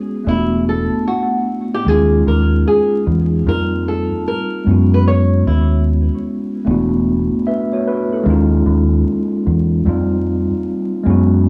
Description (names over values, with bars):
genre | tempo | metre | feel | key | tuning
lo-fi hip hop | 75 BPM | 4/4 | swing 64% on 16ths | unclear | A4 = 439 Hz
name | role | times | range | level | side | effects
tine electric piano | accompaniment | 0.0-11.5 s | G3 to E5 | -19 LUFS | equal | low-pass filter
flamenco guitar | melody | 0.3-5.8 s | E4 to C#5 | -22 LUFS | equal | low-pass filter, analog delay
deep dub fingered electric bass | bass | 0.3-11.5 s | E1 to F#2 | -18 LUFS | equal | none
room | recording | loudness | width
moderate studio reverb, RT60 0.6 s | vinyl crackle, studio ambience | -16 LUFS | mono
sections
0.0-11.5 A section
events
none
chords
0.3 E9sus4; 1.9 D#9sus4; 3.5 F9sus4; 4.7 F#9sus4; 6.7 E9sus4; 8.3 D#9sus4; 9.9 F9sus4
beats
| 0.26 1.06 1.86 2.66 | 3.46 4.26 5.06 5.86 | 6.66 7.46 8.26 9.06 | 9.86 10.66 11.46